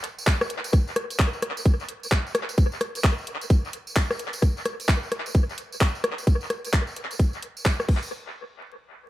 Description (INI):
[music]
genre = UK garage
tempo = 130 BPM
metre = 4/4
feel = swing 62% on 16ths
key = none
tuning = none
[part]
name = garage drum kit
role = drums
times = 0.0-8.0 s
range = crash cymbal, handclaps, hi-hat, rim click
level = -27 LUFS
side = equal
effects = small room ambience, dub echo
[part]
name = tambourine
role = percussion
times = 0.2-8.1 s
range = none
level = -39 LUFS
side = right 3 dB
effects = none
[part]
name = electronic kick drum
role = drums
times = 0.3-8.0 s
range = none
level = -19 LUFS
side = equal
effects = small room ambience
[sound]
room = light reverb, digital ambience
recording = echo-heavy mix, vinyl crackle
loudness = -22 LUFS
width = side -16 dB against mid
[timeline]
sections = 0.7-8.1 A section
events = none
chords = none